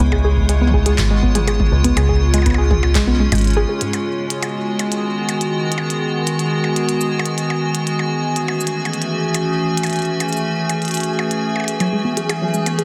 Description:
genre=IDM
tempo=122 BPM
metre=4/4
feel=straight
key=G# phrygian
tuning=A4 = 440 Hz
part: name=icy glass pad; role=sustained chords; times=0.0-12.8 s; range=C#3 to G#4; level=-22 LUFS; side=equal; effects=chorus, built-in reverb, vintage 12-bit sampler grit
part: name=warbly dusty pluck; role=arpeggios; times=0.0-3.9, 11.8-12.8 s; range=G#2 to G#4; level=-23 LUFS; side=equal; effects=chorus, tape echo
part: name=metallic FM bass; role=bass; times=0.0-3.6 s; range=G#1 to C#2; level=-18 LUFS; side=equal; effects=none
part: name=glitchy drum kit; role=drums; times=0.0-12.8 s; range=cabasa, handclaps, hi-hat, percussion blips, toms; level=-27 LUFS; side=equal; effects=small room ambience, digital delay
part: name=bubbling stepped-filter texture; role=texture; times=0.0-12.8 s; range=G#4 to C#5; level=-30 LUFS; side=equal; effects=chorus, built-in reverb
part: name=electronic kick drum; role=drums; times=0.1-3.4 s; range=none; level=-23 LUFS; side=equal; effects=small room ambience
room=moderate echo chamber reverb, RT60 1.6 s, digital ambience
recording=dense, heavily limited modern master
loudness=-18 LUFS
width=mono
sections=0.0-3.9 A section; 3.9-12.8 B section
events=break 3.4-3.9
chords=0.0 C#7; 3.9 G#m7; 7.9 F#m7; 11.8 Amaj7

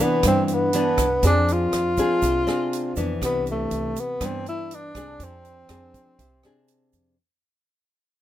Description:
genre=bossa nova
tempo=121 BPM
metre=4/4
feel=straight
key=unclear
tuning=A4 = 440 Hz
part: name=mellow tenor saxophone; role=melody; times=0.0-6.7 s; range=A3 to F4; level=-23 LUFS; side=equal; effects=none
part: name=nylon-string guitar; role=accompaniment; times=0.0-7.2 s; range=G2 to Ab4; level=-25 LUFS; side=left 1 dB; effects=none
part: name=upright bass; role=bass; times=0.2-7.2 s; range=C2 to G2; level=-27 LUFS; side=equal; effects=none
part: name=swinging big-band drum kit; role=drums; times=0.2-7.0 s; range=hi-hat, kick drum, rim click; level=-30 LUFS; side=right 2 dB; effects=none
part: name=egg shaker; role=percussion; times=0.2-7.2 s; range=none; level=-36 LUFS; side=right 8 dB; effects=none
room=light reverb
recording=minimal, uncompressed stereo recording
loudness=-20 LUFS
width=side -12 dB against mid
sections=0.0-7.2 A section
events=fade-out 0.0-7.2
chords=0.0 Cmaj9; 1.2 Fm6; 3.2 Cmaj9; 5.2 Fm6

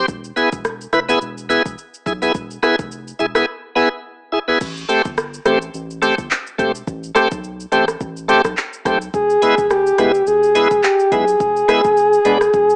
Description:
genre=dancehall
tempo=106 BPM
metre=4/4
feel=swing 56% on 16ths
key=A minor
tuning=A4 = 440 Hz
part: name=bright tonewheel organ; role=accompaniment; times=0.0-12.4 s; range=G#3 to B4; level=-15 LUFS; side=equal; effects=overdrive, slow rotary speaker, sidechain pumping, cassette tape
part: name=round analog bass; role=bass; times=0.0-12.8 s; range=E1 to B1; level=-32 LUFS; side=equal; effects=none
part: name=afro-pop drum kit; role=drums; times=0.1-12.8 s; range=crash cymbal, handclaps, hi-hat, kick drum, rim click, shaker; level=-23 LUFS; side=equal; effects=cassette tape
part: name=breathy flute-like synth lead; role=second line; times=9.1-12.8 s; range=G4 to G#4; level=-12 LUFS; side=equal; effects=chorus, cassette tape, analog delay
room=light reverb, digital ambience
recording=home recording on cassette, small speaker sound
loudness=-14 LUFS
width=side -32 dB against mid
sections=0.0-4.6 A section; 4.6-12.8 B section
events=silent gap 3.5-4.6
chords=0.1 E; 4.6 Am7; 9.1 E

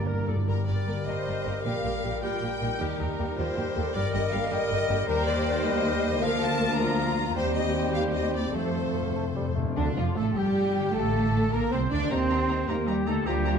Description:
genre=classical, dramatic, fast romantic movement for symphony orchestra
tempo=103 BPM (dotted quarters)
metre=6/8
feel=rubato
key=G minor, Bb major from 5.1 s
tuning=A4 = 440 Hz
part: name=rich symphonic violin section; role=melody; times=0.0-13.5 s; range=D4 to Bb5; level=-38 LUFS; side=left 4 dB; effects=none
part: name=clear clarinet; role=second line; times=0.0-9.6 s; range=A4 to C5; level=-36 LUFS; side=equal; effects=none
part: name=warm studio violin section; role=second line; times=0.0-13.5 s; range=D4 to Bb5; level=-33 LUFS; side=left 4 dB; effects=none
part: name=warm bassoon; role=accompaniment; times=0.0-9.8 s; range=F3 to A3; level=-34 LUFS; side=right 1 dB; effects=none
part: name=warm symphonic viola section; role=accompaniment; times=0.0-13.5 s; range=D3 to C5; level=-34 LUFS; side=right 2 dB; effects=none
part: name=mellow French horn section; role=sustained chords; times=0.0-13.6 s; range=D3 to G4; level=-34 LUFS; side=left 4 dB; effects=none
part: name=concert harp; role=arpeggios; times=0.0-13.6 s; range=G2 to D5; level=-36 LUFS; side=left 7 dB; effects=none
part: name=warm symphonic cello section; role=bass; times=0.0-13.6 s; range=D2 to D4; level=-32 LUFS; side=right 2 dB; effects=none
part: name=warm symphonic double bass section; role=bass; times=0.0-13.6 s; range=F1 to Eb2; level=-32 LUFS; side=right 3 dB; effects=none
part: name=timpani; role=percussion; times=0.0-2.2, 8.6-9.7 s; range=F2 to Bb2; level=-33 LUFS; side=left 1 dB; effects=none
part: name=dark trumpet section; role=stabs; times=9.8-13.6 s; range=D4 to D5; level=-31 LUFS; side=right 1 dB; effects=none
room=wet scoring stage reverb, RT60 1.9 s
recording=dark, warm production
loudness=-24 LUFS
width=side -6 dB against mid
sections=0.5-9.8 A section; 9.8-13.6 B section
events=timpani fill 0.0-0.5, 8.5-9.8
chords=0.5 Gm; 1.6 Gm/Bb; 2.8 Eb; 3.9 Eb/G; 5.1 Eb; 6.2 Bb/D; 7.4 Cm/Eb; 8.5 F; 9.8 Bb; 12.1 Eb

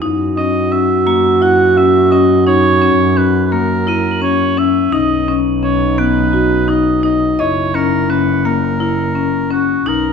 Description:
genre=contemporary instrumental, chamber music in an uneven meter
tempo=171 BPM (eighths)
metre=7/8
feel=straight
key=unclear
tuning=A4 = 440 Hz
part: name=dark French horn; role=second line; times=0.0-9.5 s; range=D#4 to F#4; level=-17 LUFS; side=right 2 dB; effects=none
part: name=marimba with medium hard mallets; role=arpeggios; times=0.0-10.1 s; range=A#3 to D#5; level=-15 LUFS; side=left 8 dB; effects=none
part: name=rich double bass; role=bass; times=0.0-10.1 s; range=F#1 to F#2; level=-20 LUFS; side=right 5 dB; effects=none
part: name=warm oboe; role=melody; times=0.4-10.1 s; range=F#4 to F#5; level=-18 LUFS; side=right 4 dB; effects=none
part: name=crotales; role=texture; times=1.1-10.1 s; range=C#7 to G#7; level=-30 LUFS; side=right 1 dB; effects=none
room=moderate recital hall reverb, RT60 1.6 s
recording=minimal, uncompressed stereo recording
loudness=-11 LUFS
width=side -6 dB against mid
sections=0.0-9.9 A section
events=none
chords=0.0 F#7(no3); 4.9 B; 7.4 F#7

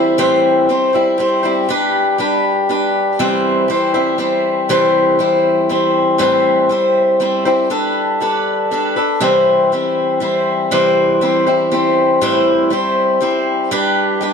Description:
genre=rock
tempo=120 BPM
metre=3/4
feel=straight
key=C major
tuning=A4 = 442 Hz
part: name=picked swing-style acoustic guitar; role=solo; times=0.0-14.3 s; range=A2 to C5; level=-12 LUFS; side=left 1 dB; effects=none
room=light reverb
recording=dark, warm production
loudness=-12 LUFS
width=side -6 dB against mid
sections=0.0-9.2 A section; 9.2-14.3 B section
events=none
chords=0.2 Am7; 1.7 G; 3.2 C; 6.2 Am7; 7.7 Gadd9; 9.2 C; 12.2 Am7; 13.7 G

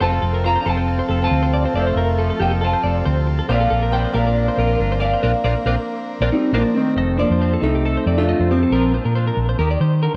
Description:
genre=highlife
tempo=138 BPM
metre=4/4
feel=swing 54% on 16ths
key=F mixolydian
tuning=A4 = 439 Hz
part: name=semi-hollow electric guitar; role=melody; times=0.0-8.9 s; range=F3 to Bb5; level=-24 LUFS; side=equal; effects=lush chorus
part: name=growling tenor saxophone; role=second line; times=0.0-8.9 s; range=Eb3 to F4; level=-28 LUFS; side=equal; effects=none
part: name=clean electric guitar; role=accompaniment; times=0.0-10.2 s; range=F2 to A4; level=-31 LUFS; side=equal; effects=analog chorus
part: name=combo organ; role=sustained chords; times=0.0-6.9 s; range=C4 to Bb4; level=-33 LUFS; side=equal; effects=none
part: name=clean electric guitar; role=arpeggios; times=0.0-10.1 s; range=G4 to Eb5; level=-28 LUFS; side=equal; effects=tremolo, slapback echo
part: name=hollow-body short-scale fingered electric bass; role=bass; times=0.0-10.2 s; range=F1 to Eb3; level=-22 LUFS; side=equal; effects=none
room=little or no reverb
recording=dry, close 1970s-style studio recording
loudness=-19 LUFS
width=mono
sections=0.0-7.0 A section; 7.0-10.2 B section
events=band accent 5.2-7.0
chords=0.0 F; 3.5 Bbadd9; 7.0 F7; 8.7 Bbadd9; 9.6 Eb

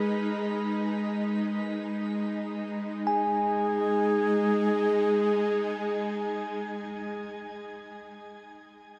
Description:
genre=ambient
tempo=free time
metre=none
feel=none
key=unclear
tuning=A4 = 438 Hz
part: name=mellow alto flute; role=melody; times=0.0-6.8 s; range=G#4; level=-32 LUFS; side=equal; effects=diffuse ambient delay
part: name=bowed-like drone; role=drone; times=0.0-6.8 s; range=G#3 to D#4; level=-33 LUFS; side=equal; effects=built-in reverb
part: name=bell-like tine electric piano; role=arpeggios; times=3.1-9.0 s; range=G#5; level=-36 LUFS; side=equal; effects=none
room=wet shimmer reverb, RT60 8.3 s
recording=dark, warm production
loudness=-28 LUFS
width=mono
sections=0.0-3.1 A section; 3.1-6.9 B section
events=none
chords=none

